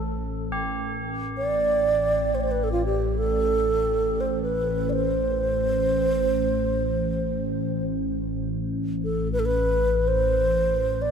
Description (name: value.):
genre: world meditative, free-time meditation music.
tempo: free time.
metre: none.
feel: none.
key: A minor.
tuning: A4 = 440 Hz.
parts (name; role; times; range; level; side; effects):
deep dark ambient pad; drone; 0.0-11.1 s; A1; -26 LUFS; equal; chorus, built-in reverb.
tubular bells; texture; 0.0-8.4 s; G4 to A4; -36 LUFS; equal; none.
breathy mellow wooden-headed alto flute; melody; 1.4-11.1 s; F4 to D5; -24 LUFS; right 2 dB; none.
room: moderate huge ambient reverb, RT60 4.8 s.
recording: none.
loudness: -22 LUFS.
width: side -7 dB against mid.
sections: 0.4-11.1 A section.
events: none.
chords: none.